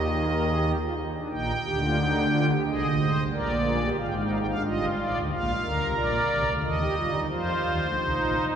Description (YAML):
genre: classical, baroque-style 3-part fugue for pipe organ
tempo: 90 BPM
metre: 3/4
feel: straight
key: Eb major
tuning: A4 = 440 Hz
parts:
  - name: pipe organ, strings celeste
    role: solo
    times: 0.0-8.6 s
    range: G1 to G5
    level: -23 LUFS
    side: right 1 dB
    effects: none
room: wet cathedral reverb, RT60 5.9 s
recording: recorded in a church or concert hall, small room ambience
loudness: -23 LUFS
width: side -8 dB against mid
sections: 0.0-1.3 A section; 1.3-8.6 B section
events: none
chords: 0.0 N.C.; 1.3 Eb/Bb; 2.7 Ab; 3.3 Bb7; 4.7 Eb/G; 5.3 Bb; 6.6 Eb; 7.3 F7